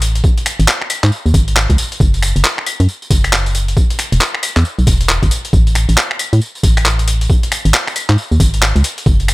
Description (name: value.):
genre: UK garage, two-step garage.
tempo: 136 BPM.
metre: 4/4.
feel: swing 62% on 16ths.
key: unclear.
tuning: A4 = 440 Hz.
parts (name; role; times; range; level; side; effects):
organ-like FM bass; bass; 0.0-9.3 s; E1 to A2; -13 LUFS; equal; sidechain pumping.
boom bap sampler-style drum kit; drums; 0.0-9.3 s; claves, finger snaps, handclaps, hi-hat, tambourine; -16 LUFS; equal; overdrive.
electronic kick drum; drums; 0.2-9.2 s; none; -13 LUFS; equal; overdrive.
room: little or no reverb.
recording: none.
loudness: -11 LUFS.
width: side -21 dB against mid.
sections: 0.0-9.3 A section.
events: kick drops out 8.6-9.1.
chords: none.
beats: | 0.24 0.68 1.12 1.56 | 2.00 2.44 2.88 3.33 | 3.77 4.21 4.65 5.09 | 5.53 5.97 6.42 6.86 | 7.30 7.74 8.18 8.62 | 9.06.